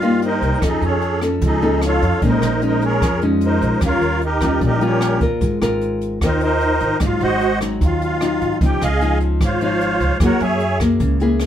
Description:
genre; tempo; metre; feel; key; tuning
bossa nova; 150 BPM; 4/4; straight; unclear; A4 = 442 Hz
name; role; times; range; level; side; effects
musette accordion; melody; 0.0-10.8 s; C#4 to Ab5; -19 LUFS; right 1 dB; none
nylon-string guitar; accompaniment; 0.0-11.5 s; G2 to Bb4; -20 LUFS; left 2 dB; none
upright bass; bass; 0.0-11.5 s; Ab1 to G2; -22 LUFS; right 1 dB; none
jazz brush drum kit; drums; 0.0-11.5 s; hi-hat, kick drum, rim click; -23 LUFS; equal; none
room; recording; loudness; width
moderate studio reverb, RT60 0.6 s; heard from further back in the room; -15 LUFS; side -10 dB against mid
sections
0.0-11.5 A section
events
accordion solo 0.0-11.5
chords
0.0 Cm7; 0.6 F7alt; 2.2 Bbm11; 3.8 Eb9; 5.4 Ab69; 7.0 Ab7; 8.6 Dbmaj9; 10.2 Gb9

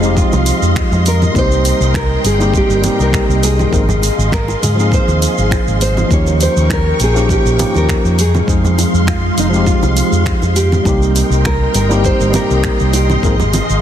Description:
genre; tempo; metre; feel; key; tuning
sunset chillout; 101 BPM; 4/4; swing 54% on 16ths; Ab major; A4 = 440 Hz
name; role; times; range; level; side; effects
tine electric piano; accompaniment; 0.0-13.4 s; F3 to Bb4; -18 LUFS; equal; auto-pan, ping-pong delay
soft string machine; sustained chords; 0.0-13.8 s; Ab3 to Db6; -20 LUFS; equal; ensemble chorus
fingered electric bass; bass; 0.0-13.8 s; F1 to Ab2; -15 LUFS; equal; none
deep house drum kit; drums; 0.0-13.8 s; congas, finger snaps, hi-hat, shaker; -21 LUFS; right 2 dB; soft clipping on snare
nylon-string guitar; melody; 0.2-13.8 s; Eb4 to Db5; -20 LUFS; equal; ping-pong delay
electronic kick drum; drums; 0.2-13.4 s; none; -17 LUFS; equal; none
bongos and congas; percussion; 0.3-13.7 s; none; -24 LUFS; right 1 dB; none
room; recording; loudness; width
light reverb; dense, heavily limited modern master; -11 LUFS; side -10 dB against mid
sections
0.0-13.8 A section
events
none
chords
0.0 Fm7; 1.4 Cm7; 3.7 Ab6; 6.1 Eb7; 8.2 Fm7; 10.9 Cm7; 13.2 Ab6

